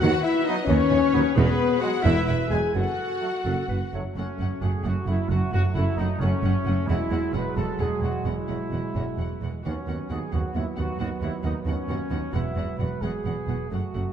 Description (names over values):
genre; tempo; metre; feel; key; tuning
cinematic, heroic adventure film score; 88 BPM (dotted quarters); 6/8; straight; F# dorian; A4 = 440 Hz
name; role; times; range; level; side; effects
rich symphonic violin section; melody; 0.0-14.0 s; B4 to G#5; -38 LUFS; left 5 dB; none
warm clarinet; second line; 0.0-4.0 s; G#4 to C#5; -34 LUFS; left 2 dB; none
warm symphonic violin section; second line; 0.0-14.0 s; F#4 to G#5; -40 LUFS; left 4 dB; none
rich symphonic viola section; accompaniment; 0.0-14.0 s; G#3 to G#4; -36 LUFS; equal; none
mellow French horn section; sustained chords; 0.0-14.1 s; B3 to B4; -29 LUFS; left 6 dB; none
dark trumpet section; stabs; 0.0-14.1 s; C#4 to G#5; -33 LUFS; right 2 dB; none
clear symphonic cello section; bass; 0.0-14.0 s; D#2 to F#2; -29 LUFS; right 2 dB; none
mellow tuba; bass; 0.0-4.0 s; E1 to D#2; -30 LUFS; right 3 dB; none
rich symphonic double bass section; bass; 0.0-14.0 s; E1 to D#2; -28 LUFS; right 2 dB; none
bright trombone section; sustained chords; 0.5-14.1 s; F#3 to B3; -35 LUFS; right 5 dB; none
room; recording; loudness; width
moderate scoring stage reverb, RT60 1.7 s; dark, warm production; -23 LUFS; side -8 dB against mid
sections
0.0-4.2 A section; 4.2-14.1 B section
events
none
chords
0.0 Badd9/D#; 1.4 Eadd9; 2.7 F#m; 6.9 Eadd9; 9.6 Badd9/D#; 12.3 Eadd9